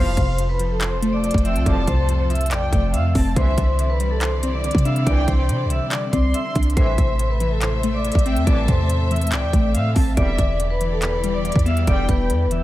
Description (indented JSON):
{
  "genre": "hip hop, trap",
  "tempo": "141 BPM",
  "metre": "4/4",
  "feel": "half-time",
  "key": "unclear",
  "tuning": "A4 = 440 Hz",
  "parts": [
    { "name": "vibraphone with medium hard mallets", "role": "melody", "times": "0.0-12.6 s", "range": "A4 to E6", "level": "-26 LUFS", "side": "left 2 dB", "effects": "low-pass filter, tape echo" },
    { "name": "dark studio violin section", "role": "second line", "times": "0.0-12.3 s", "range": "E5 to C6", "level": "-32 LUFS", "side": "right 1 dB", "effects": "tape echo" },
    { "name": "glassy digital keys", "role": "accompaniment", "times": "0.0-12.6 s", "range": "E2 to D4", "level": "-25 LUFS", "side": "left 1 dB", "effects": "chorus, low-pass filter, tape echo" },
    { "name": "warm symphonic string section", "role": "sustained chords", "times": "0.0-12.6 s", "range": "C3 to E5", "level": "-32 LUFS", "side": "equal", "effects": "none" },
    { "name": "warm brass ensemble", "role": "stabs", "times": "0.0-12.2 s", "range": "C2 to G3", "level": "-31 LUFS", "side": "right 3 dB", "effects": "none" },
    { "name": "clean 808-style bass", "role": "bass", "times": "0.0-12.6 s", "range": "E1 to C3", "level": "-21 LUFS", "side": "equal", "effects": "none" },
    { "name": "trap drum kit", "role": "drums", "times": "0.2-12.6 s", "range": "handclaps, hi-hat, kick drum", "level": "-21 LUFS", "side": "equal", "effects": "none" }
  ],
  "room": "small room ambience",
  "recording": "echo-heavy mix",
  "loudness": "-17 LUFS",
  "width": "side -15 dB against mid",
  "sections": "0.0-12.6 A section",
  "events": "none",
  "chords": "0.0 F; 3.4 Cadd9; 6.8 Am; 10.2 Em7"
}